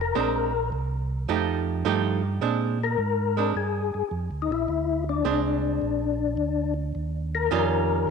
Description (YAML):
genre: jazz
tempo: 106 BPM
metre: 4/4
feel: swing 69% on 8ths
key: Bb mixolydian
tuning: A4 = 439 Hz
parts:
  - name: percussive tonewheel organ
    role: melody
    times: 0.0-8.1 s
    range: D4 to Bb4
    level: -26 LUFS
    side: left 9 dB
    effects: chorus vibrato, fast rotary speaker
  - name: mellow tonewheel organ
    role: bass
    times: 0.0-8.1 s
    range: F1 to Bb2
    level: -28 LUFS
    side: right 2 dB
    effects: slow rotary speaker
  - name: archtop guitar, miked and amplified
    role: accompaniment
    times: 0.2-8.1 s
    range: Eb3 to G4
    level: -27 LUFS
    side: right 10 dB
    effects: none
room: moderate echo chamber reverb, RT60 1.8 s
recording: 1960s-style stereo with parts hard left and right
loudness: -23 LUFS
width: side -5 dB against mid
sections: 0.0-2.4 A section; 2.4-8.1 B section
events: tonewheel organ solo 0.0-2.4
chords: 0.2 Bb9; 1.3 F9; 2.4 Bb9; 6.9 Eb9